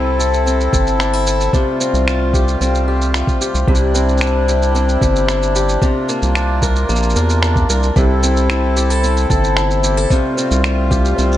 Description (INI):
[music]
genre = folktronica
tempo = 112 BPM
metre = 4/4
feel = straight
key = unclear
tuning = A4 = 440 Hz
[part]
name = accordion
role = sustained chords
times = 0.0-11.4 s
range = C3 to A4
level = -22 LUFS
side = equal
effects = vintage 12-bit sampler grit
[part]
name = fingerpicked swing-style acoustic guitar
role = arpeggios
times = 0.0-11.4 s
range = C3 to Bb4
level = -18 LUFS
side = left 2 dB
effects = digital delay
[part]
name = round analog bass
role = bass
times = 0.0-11.4 s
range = G1 to E2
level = -16 LUFS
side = equal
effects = none
[part]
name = electronic shaker and finger snaps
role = drums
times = 0.2-11.4 s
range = none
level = -23 LUFS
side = right 2 dB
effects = none
[part]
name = electronic kick drum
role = drums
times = 0.7-11.0 s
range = none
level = -16 LUFS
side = equal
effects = none
[sound]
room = light reverb, small room ambience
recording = nothing above 10.7 kHz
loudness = -13 LUFS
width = side -13 dB against mid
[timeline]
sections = 0.0-11.4 A section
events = none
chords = 0.0 Am/C; 1.5 Fadd9/C; 3.7 Cadd9; 5.8 Bb/C; 8.0 Am/C; 10.1 Fadd9/C